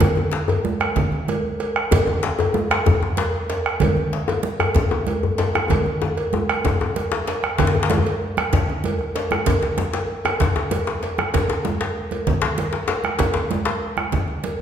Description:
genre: west african traditional, West African drum ensemble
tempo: 128 BPM (dotted quarters)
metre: 12/8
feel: straight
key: none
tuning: none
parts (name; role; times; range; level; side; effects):
- bombo; percussion; 0.0-14.3 s; none; -24 LUFS; right 2 dB; none
- congas; percussion; 0.0-14.6 s; none; -26 LUFS; right 4 dB; none
- cowbell; percussion; 0.0-14.6 s; none; -27 LUFS; right 2 dB; none
- djembe; percussion; 0.0-14.6 s; none; -28 LUFS; left 3 dB; none
- djembe; percussion; 0.0-13.8 s; none; -24 LUFS; left 4 dB; none
room: wet recital hall reverb, RT60 1.7 s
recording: recorded in a church or concert hall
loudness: -19 LUFS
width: side -9 dB against mid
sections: 0.0-7.6 A section; 7.6-14.6 B section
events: speeding up 0.0-14.6; drum fill 5.7-7.6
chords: none

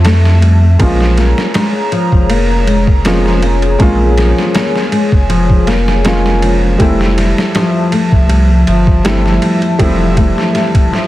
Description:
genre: trip hop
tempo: 80 BPM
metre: 4/4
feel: swing 53% on 16ths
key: unclear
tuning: A4 = 442 Hz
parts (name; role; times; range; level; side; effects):
- felt-muted upright piano; accompaniment; 0.0-11.1 s; G3 to F4; -17 LUFS; right 1 dB; harmonic tremolo, tape echo
- dark analog pad; sustained chords; 0.0-11.1 s; F3 to Bb5; -18 LUFS; left 1 dB; chorus
- flamenco guitar; arpeggios; 0.0-11.1 s; F3 to Bb3; -17 LUFS; left 2 dB; vintage 12-bit sampler grit, ping-pong delay
- soft dub sub bass; bass; 0.0-10.3 s; F1 to F2; -12 LUFS; equal; none
- trip hop sampler-style drum kit; drums; 0.0-11.1 s; kick drum, ride cymbal, snare drum; -15 LUFS; equal; none
room: light reverb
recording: dense, heavily limited modern master, vinyl crackle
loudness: -9 LUFS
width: side -15 dB against mid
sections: 0.0-11.1 A section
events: none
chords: 0.0 Fmaj7; 0.8 Bbm7; 6.8 Fmaj7

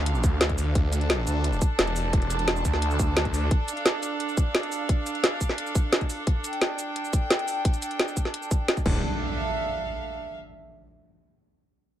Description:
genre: dark technical drum and bass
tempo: 174 BPM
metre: 4/4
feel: straight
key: D minor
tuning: A4 = 440 Hz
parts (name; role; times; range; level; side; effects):
- snarling distorted saw bass; bass; 0.0-3.5, 8.9-9.0 s; D1 to D2; -26 LUFS; equal; distortion, tube saturation
- rich chamber string section; texture; 0.0-10.4 s; D4 to A5; -31 LUFS; right 2 dB; sidechain pumping
- drum and bass drum kit; drums; 0.1-8.9 s; crash cymbal, hi-hat, shaker, snare drum; -26 LUFS; equal; none
- electronic kick drum; drums; 0.2-8.9 s; none; -24 LUFS; equal; none
- impact; sound effects; 8.9-10.2 s; none; -32 LUFS; equal; none
room: light reverb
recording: none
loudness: -23 LUFS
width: side -11 dB against mid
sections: 0.0-9.0 A section; 9.0-10.4 B section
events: none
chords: 0.0 Dm; 8.9 D5; 9.0 Dmadd9

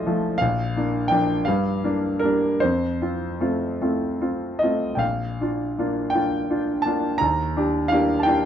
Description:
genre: classical, romantic nocturne for solo piano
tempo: 48-60 BPM (dotted quarters)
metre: 12/8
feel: rubato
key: Bb major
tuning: A4 = 439 Hz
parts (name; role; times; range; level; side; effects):
- clear concert grand piano; solo; 0.0-8.5 s; Bb1 to Bb5; -20 LUFS; equal; none
room: moderate small room reverb, RT60 0.5 s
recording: worn, warbling old tape, cassette tape, warbly pitch drift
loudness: -20 LUFS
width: side -9 dB against mid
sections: 0.0-8.5 A section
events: none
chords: 0.4 Bb; 1.5 Gm7; 2.6 F; 5.0 Bb; 7.2 Ebmaj7

